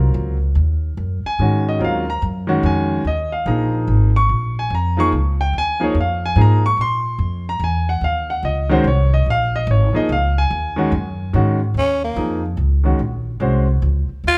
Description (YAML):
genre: modal jazz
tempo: 145 BPM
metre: 3/4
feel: swing 64% on 8ths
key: Eb dorian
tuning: A4 = 442 Hz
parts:
  - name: clear concert grand piano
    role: accompaniment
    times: 0.0-13.7 s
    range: Eb3 to Db6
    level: -22 LUFS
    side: equal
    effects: none
  - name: upright bass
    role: bass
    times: 0.0-14.4 s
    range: Ab1 to Bb2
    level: -20 LUFS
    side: equal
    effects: none
  - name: growling tenor saxophone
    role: melody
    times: 11.8-14.4 s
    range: Bb3 to F4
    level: -20 LUFS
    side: equal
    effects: none
room: light reverb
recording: band playing live in one room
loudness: -18 LUFS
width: mono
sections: 0.0-11.8 A section; 11.8-14.4 A section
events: tenor saxophone solo 11.8-14.4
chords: 0.0 Eb9sus4